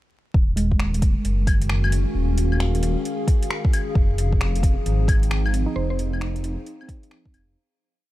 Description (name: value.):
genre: future garage.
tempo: 133 BPM.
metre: 4/4.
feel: swing 64% on 16ths.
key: Eb dorian.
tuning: A4 = 440 Hz.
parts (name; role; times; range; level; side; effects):
warbly tape-like pad; sustained chords; 1.3-7.6 s; Eb3 to F5; -29 LUFS; left 2 dB; chorus, built-in reverb, phaser, sidechain pumping.
swelling detuned saw bass; bass; 0.3-7.5 s; Eb1 to Ab1; -22 LUFS; equal; sidechain pumping.
electronic kick drum; drums; 0.3-7.3 s; none; -19 LUFS; equal; overdrive.
overdriven tine electric piano; accompaniment; 0.6-7.6 s; Ab3 to Eb4; -32 LUFS; right 3 dB; medium tremolo, sidechain pumping, tape echo.
deep house drum kit; drums; 0.6-7.5 s; claves, finger snaps, hi-hat; -31 LUFS; left 2 dB; overdrive.
mallet-like synth pluck; melody; 5.8-6.0 s; C5; -34 LUFS; right 1 dB; chorus, cassette tape, analog delay.
room: little or no reverb.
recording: vinyl crackle.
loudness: -19 LUFS.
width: side -16 dB against mid.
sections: 0.3-7.6 groove.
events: fade-out 5.2-7.6.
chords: 0.3 Ebm11; 4.0 Fm7.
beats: | 0.34 0.80 1.25 1.70 | 2.15 2.60 3.05 3.50 | 3.95 4.40 4.86 5.31 | 5.76 6.21 6.66 7.11.